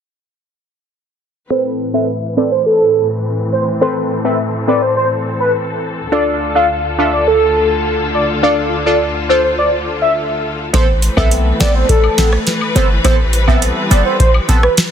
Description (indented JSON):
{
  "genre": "dancehall",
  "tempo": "104 BPM",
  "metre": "4/4",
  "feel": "straight",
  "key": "A minor",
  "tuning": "A4 = 439 Hz",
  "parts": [
    { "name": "warm velvety synth lead", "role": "melody", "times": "1.5-14.7 s", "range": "A4 to F5", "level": "-15 LUFS", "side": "equal", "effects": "chorus, low-pass filter, digital delay" },
    { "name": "synth brass stab", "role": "accompaniment", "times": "1.5-14.6 s", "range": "B3 to B4", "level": "-18 LUFS", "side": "equal", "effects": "chorus, phaser, low-pass filter" },
    { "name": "clear studio string section", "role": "sustained chords", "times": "1.5-14.9 s", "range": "D2 to B4", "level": "-20 LUFS", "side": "left 2 dB", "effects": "sidechain pumping, low-pass filter" },
    { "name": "warm 808-style bass", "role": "bass", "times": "10.7-14.0 s", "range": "G1 to B1", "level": "-14 LUFS", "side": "equal", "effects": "none" },
    { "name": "booming analog drum machine", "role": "drums", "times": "10.7-14.9 s", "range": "hi-hat, kick drum, rim click, snare drum", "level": "-13 LUFS", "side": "equal", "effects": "none" },
    { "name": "woodblock and cabasa", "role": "percussion", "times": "10.7-14.6 s", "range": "none", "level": "-27 LUFS", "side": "left 8 dB", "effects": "none" }
  ],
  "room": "light reverb",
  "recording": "dense, heavily limited modern master",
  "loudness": "-12 LUFS",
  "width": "side -8 dB against mid",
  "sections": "1.5-10.7 A section; 10.7-14.9 B section",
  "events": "filter sweep 1.5-10.7",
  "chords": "1.5 Amadd9; 6.1 Dm; 10.7 Amadd9",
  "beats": "| 1.51 2.08 2.66 3.24 | 3.81 4.39 4.97 5.55 | 6.12 6.70 7.28 7.85 | 8.43 9.01 9.58 10.16 | 10.74 11.31 11.89 12.47 | 13.05 13.62 14.20 14.78"
}